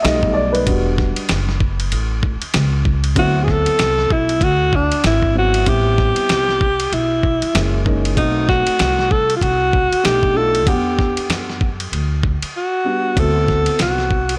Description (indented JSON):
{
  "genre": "hip hop, jazz-hop",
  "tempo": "96 BPM",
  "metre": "4/4",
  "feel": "swing 60% on 16ths",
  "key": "unclear",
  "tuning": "A4 = 440 Hz",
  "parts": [
    { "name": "dark grand piano", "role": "accompaniment", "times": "0.0-14.1 s", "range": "F#3 to F#5", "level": "-25 LUFS", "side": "equal", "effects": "none" },
    { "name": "upright bass", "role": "bass", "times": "0.0-14.4 s", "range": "E1 to F#2", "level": "-23 LUFS", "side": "equal", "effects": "tube saturation" },
    { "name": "dusty soul sampler-style drum kit", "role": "drums", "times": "0.0-14.4 s", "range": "hi-hat, kick drum, ride cymbal, snare drum", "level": "-23 LUFS", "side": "equal", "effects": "none" },
    { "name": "mellow alto saxophone", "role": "melody", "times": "3.2-14.3 s", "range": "D4 to A4", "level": "-20 LUFS", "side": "equal", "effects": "tape echo" }
  ],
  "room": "light reverb, small room ambience",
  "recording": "dry, gritty hardware recording",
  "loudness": "-17 LUFS",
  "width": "mono",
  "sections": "0.0-3.2 A section; 3.2-14.4 B section",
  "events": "grand piano solo 0.0-3.2; drums muted 12.5-13.2",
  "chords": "0.0 Baug7; 0.7 Em9; 3.2 D13; 5.7 Am9; 7.5 F#9; 8.2 B7b9; 10.0 B7alt; 10.7 Em9; 13.2 D13",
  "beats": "0.04 | 0.67 1.29 1.92 2.54 | 3.17 3.79 4.42 5.04 | 5.67 6.29 6.92 7.54 | 8.17 8.79 9.42 10.04 | 10.67 11.29 11.92 12.54 | 13.17 13.79"
}